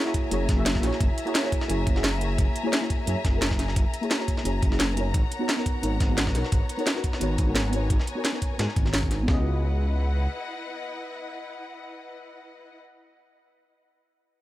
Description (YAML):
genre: liquid drum and bass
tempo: 174 BPM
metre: 4/4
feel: swing 54% on 16ths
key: C# dorian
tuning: A4 = 440 Hz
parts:
  - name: deep mellow chord stab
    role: accompaniment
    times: 0.0-13.2 s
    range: A#3 to F#5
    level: -30 LUFS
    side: equal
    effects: chorus, digital delay
  - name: rich studio string section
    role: sustained chords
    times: 0.0-12.8 s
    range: B3 to A#5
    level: -35 LUFS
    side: left 2 dB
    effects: sidechain pumping
  - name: breakbeat sampler-style drum kit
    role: drums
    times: 0.1-9.4 s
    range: kick drum, snare drum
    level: -25 LUFS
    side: equal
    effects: none
  - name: breakbeat sampler-style drum kit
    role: drums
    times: 0.1-9.0 s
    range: hi-hat, snare drum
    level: -34 LUFS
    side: equal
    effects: high-pass filter on snare, high-pass filter on hats
  - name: drum and bass drum kit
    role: drums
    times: 0.1-9.2 s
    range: hi-hat, snare drum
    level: -28 LUFS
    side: equal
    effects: none
  - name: dark detuned saw bass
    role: bass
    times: 0.3-10.3 s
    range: F#1 to G#2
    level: -26 LUFS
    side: equal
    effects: tube saturation
room: little or no reverb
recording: none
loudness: -23 LUFS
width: side -15 dB against mid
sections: 0.0-9.3 A section; 9.3-12.0 B section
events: filter sweep on synth stab 0.0-9.3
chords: 0.0 F#9; 5.1 G#m11; 9.3 C#m11